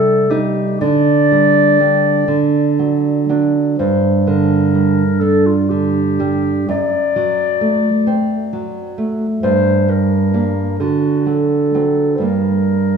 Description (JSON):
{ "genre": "romantic duo for clarinet and classical guitar", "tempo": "38-44 BPM (dotted quarters)", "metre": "6/8", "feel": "rubato", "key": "G minor", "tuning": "A4 = 440 Hz", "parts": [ { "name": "mellow clarinet", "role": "melody", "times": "0.0-13.0 s", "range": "F4 to D5", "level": "-17 LUFS", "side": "left 4 dB", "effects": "none" }, { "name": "nylon-string guitar", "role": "accompaniment", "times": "0.0-13.0 s", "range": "F#2 to Eb4", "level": "-14 LUFS", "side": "right 4 dB", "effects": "none" } ], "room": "wet recital hall reverb, RT60 1.5 s", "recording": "recorded in a church or concert hall", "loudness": "-13 LUFS", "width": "side -6 dB against mid", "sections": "0.0-13.0 A section", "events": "none", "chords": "0.0 Cm; 0.8 G5/D; 2.3 D; 3.8 Gm; 6.7 D7/F#; 9.4 Gm; 10.8 D7; 12.2 Gm", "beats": "| 0.81 2.28 | 3.79 5.21 | 6.69 8.07 | 9.43 10.80 | 12.23" }